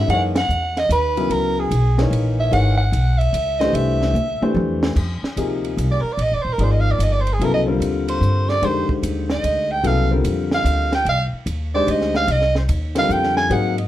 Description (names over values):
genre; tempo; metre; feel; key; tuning
modal jazz; 148 BPM; 3/4; swing 66% on 8ths; C# dorian, F dorian from 5.0 s; A4 = 437 Hz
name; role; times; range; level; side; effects
growling soprano saxophone; melody; 0.0-13.8 s; G#4 to Ab5; -21 LUFS; right 2 dB; none
warm upright piano; accompaniment; 0.0-13.7 s; C3 to D5; -22 LUFS; left 4 dB; none
upright bass; bass; 0.0-13.9 s; Eb1 to Ab2; -20 LUFS; equal; none
compact cocktail drum kit; drums; 0.1-13.8 s; crash cymbal, hi-hat, kick drum, ride cymbal, snare drum, toms; -28 LUFS; right 1 dB; none
room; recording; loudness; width
light reverb; none; -17 LUFS; side -13 dB against mid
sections
0.0-5.0 A section; 5.0-13.9 B section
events
band accent 0.3; drum fill 4.1-5.0; soprano saxophone solo 5.0-13.9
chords
0.0 C#9sus4; 3.7 C69; 5.0 F9sus4